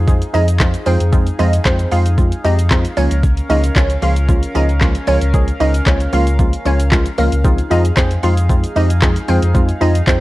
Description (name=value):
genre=dance-pop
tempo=114 BPM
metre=4/4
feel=straight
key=unclear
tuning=A4 = 440 Hz
part: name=chorused pulse-width pad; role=sustained chords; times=0.0-10.2 s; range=Db4 to F5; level=-26 LUFS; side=left 1 dB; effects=sidechain pumping
part: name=sub bass with octave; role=bass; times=0.0-10.2 s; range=Db2 to F2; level=-16 LUFS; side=equal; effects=sidechain pumping
part: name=wavetable chord stab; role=accompaniment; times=0.1-10.2 s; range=F3 to Ab4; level=-21 LUFS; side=right 1 dB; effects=sidechain pumping
part: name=smooth R&B drum kit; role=drums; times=0.1-10.2 s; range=handclaps, hi-hat, kick drum, shaker, snare drum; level=-16 LUFS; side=equal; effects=none
part: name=glassy wavetable pluck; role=melody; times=0.3-10.2 s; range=Bb3 to F5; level=-21 LUFS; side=right 1 dB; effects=chorus, tape echo
room=little or no reverb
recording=worn, warbling old tape, cassette tape, warbly pitch drift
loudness=-12 LUFS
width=side -18 dB against mid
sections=0.0-10.2 A section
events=none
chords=0.0 Fm7; 3.0 Db6; 7.4 Fm7